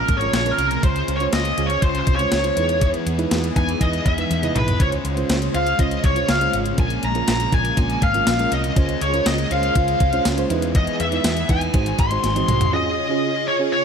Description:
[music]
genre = 1980s-style pop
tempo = 121 BPM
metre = 4/4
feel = straight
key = Db major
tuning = A4 = 440 Hz
[part]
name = high-gain lead guitar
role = melody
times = 0.0-13.8 s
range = Bb4 to C6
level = -22 LUFS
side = left 1 dB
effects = distortion
[part]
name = biting overdriven guitar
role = accompaniment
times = 0.0-12.7 s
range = Ab2 to E4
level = -31 LUFS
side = left 6 dB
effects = analog chorus
[part]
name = mellow FM electric piano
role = accompaniment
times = 0.0-13.8 s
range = Ab3 to C5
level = -26 LUFS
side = right 6 dB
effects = chorus
[part]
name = phased string machine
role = sustained chords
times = 0.0-13.8 s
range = Db3 to C5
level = -28 LUFS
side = equal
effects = ensemble chorus, phaser
[part]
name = woody fretless electric bass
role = bass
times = 0.1-12.7 s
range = Ab1 to E2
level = -25 LUFS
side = equal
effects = none
[part]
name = clean 12-bit digital drum machine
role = drums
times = 0.1-12.7 s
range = hi-hat, kick drum, snare drum, tambourine, toms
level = -21 LUFS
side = equal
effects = overdrive
[sound]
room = light reverb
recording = none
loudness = -17 LUFS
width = side -7 dB against mid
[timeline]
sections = 0.0-12.7 A section; 12.7-13.8 B section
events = lead electric guitar solo 0.0-12.7; drum fill 4.3-4.8, 12.2-12.7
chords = 0.0 Bbm7; 0.8 Dbmaj7; 2.6 Emaj7; 4.8 Dbmaj7; 6.8 Bbm7; 8.8 Dbmaj7; 10.5 Emaj7; 11.7 Ab7; 12.7 Db

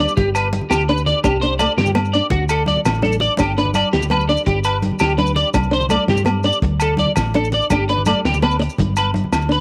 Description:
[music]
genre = highlife guitar band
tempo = 111 BPM (dotted quarters)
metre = 12/8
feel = straight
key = G major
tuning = A4 = 443 Hz
[part]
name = nylon-string guitar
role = accompaniment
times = 0.0-9.6 s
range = A3 to D4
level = -25 LUFS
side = equal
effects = cassette tape
[part]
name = electric guitar at the edge of break-up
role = arpeggios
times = 0.0-9.6 s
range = F#4 to D5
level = -22 LUFS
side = equal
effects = analog chorus, cassette tape, tape echo
[part]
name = hollow-body short-scale fingered electric bass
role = bass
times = 0.0-9.6 s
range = G1 to G2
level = -24 LUFS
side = equal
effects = none
[part]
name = maracas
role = percussion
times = 0.1-9.5 s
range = none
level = -36 LUFS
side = equal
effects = none
[part]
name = cloth-damped thuddy drum kit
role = drums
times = 0.2-9.6 s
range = hi-hat, kick drum, snare drum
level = -27 LUFS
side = equal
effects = cassette tape
[part]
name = congas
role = percussion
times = 0.2-9.3 s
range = none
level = -27 LUFS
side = equal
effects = none
[part]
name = agogo bells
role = percussion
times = 0.3-9.5 s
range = none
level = -27 LUFS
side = equal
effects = none
[sound]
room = light reverb, small room reverb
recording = home recording on cassette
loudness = -17 LUFS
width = mono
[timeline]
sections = 0.0-9.6 A section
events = none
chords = 0.0 G; 1.2 Csus2; 2.3 D5; 3.4 G; 5.5 Csus2; 6.6 D5; 7.7 G

